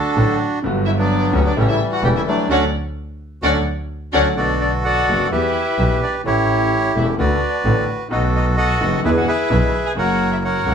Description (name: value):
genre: tango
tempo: 129 BPM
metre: 4/4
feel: rubato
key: D major, B minor from 4.4 s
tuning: A4 = 439 Hz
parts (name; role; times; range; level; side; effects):
- bandoneon; melody; 0.0-10.7 s; E3 to G#5; -19 LUFS; right 1 dB; none
- warm studio violin section; second line; 0.0-10.7 s; C#4 to A5; -24 LUFS; left 3 dB; none
- clear concert grand piano; accompaniment; 0.2-10.7 s; E1 to G4; -23 LUFS; left 1 dB; none
- rich double bass; bass; 0.2-10.7 s; E1 to E2; -20 LUFS; right 1 dB; none
room: moderate studio reverb, RT60 0.7 s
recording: band playing live in one room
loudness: -15 LUFS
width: side -7 dB against mid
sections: 0.0-4.4 A section; 4.4-10.7 B section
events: band accent 2.5-4.4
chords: 0.0 D; 0.6 Gmaj7; 1.6 A7; 2.5 Dmaj7; 4.4 Bm7; 5.3 Em; 6.3 A7; 7.2 D6; 8.1 B7; 9.0 E7; 10.0 F#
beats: 0.17 | 0.63 1.09 1.56 2.03 | 2.49 2.96 3.43 3.90 | 4.38 4.85 5.32 5.79 | 6.25 6.72 7.19 7.65 | 8.11 8.58 9.04 9.51 | 9.97 10.44